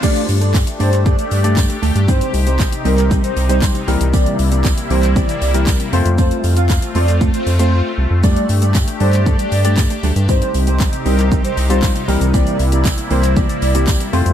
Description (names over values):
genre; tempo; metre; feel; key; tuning
dance-pop; 117 BPM; 4/4; straight; unclear; A4 = 441 Hz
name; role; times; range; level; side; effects
airy dreamy lead; melody; 0.0-13.7 s; Bb4 to F5; -23 LUFS; equal; chorus, sidechain pumping
barky tine electric piano; accompaniment; 0.0-14.3 s; G3 to D5; -22 LUFS; left 3 dB; sidechain pumping
sweeping resonant pad; sustained chords; 0.0-14.3 s; C3 to G4; -24 LUFS; left 2 dB; chorus, sidechain pumping
mellow electric guitar; riff; 0.0-14.3 s; E3 to A4; -23 LUFS; right 5 dB; wide subtle chorus
house drum kit; drums; 0.0-14.3 s; crash cymbal, handclaps, hi-hat, kick drum, shaker; -18 LUFS; equal; overdrive
tambourine; percussion; 0.0-14.3 s; none; -30 LUFS; right 6 dB; none
round analog bass; bass; 0.3-14.3 s; C2 to G2; -16 LUFS; equal; sidechain pumping
room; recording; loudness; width
little or no reverb; high-pass filter; -13 LUFS; side -10 dB against mid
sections
0.0-14.3 A section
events
drop 0.0-14.3; silent gap 7.7-8.2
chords
0.0 Gsus2; 2.1 Cm; 3.9 C7; 5.9 F; 8.2 Gsus2; 10.3 Cm; 12.1 C7